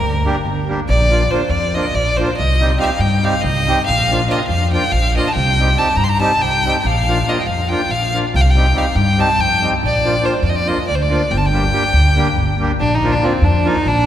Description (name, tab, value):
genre	balkan folk, Balkan wedding band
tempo	282 BPM (eighths)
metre	7/8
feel	straight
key	unclear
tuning	A4 = 440 Hz
part	bright violin	melody	0.0-14.1 s	C4 to C6	-18 LUFS	left 1 dB	none
part	upright bass	bass	0.0-14.1 s	G1 to G2	-17 LUFS	equal	none
part	accordion	accompaniment	0.2-13.8 s	F3 to G4	-21 LUFS	right 1 dB	none
room	wet cathedral reverb, RT60 4.5 s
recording	recorded in a church or concert hall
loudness	-13 LUFS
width	side -11 dB against mid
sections	0.9-12.8 A section; 12.8-14.1 A section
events	none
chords	0.0 Gm; 0.9 Bb; 2.4 Cm; 3.9 Bb; 5.4 Cm; 6.9 Bb; 8.3 Cm; 9.8 Bb; 11.3 Gm; 12.8 Bb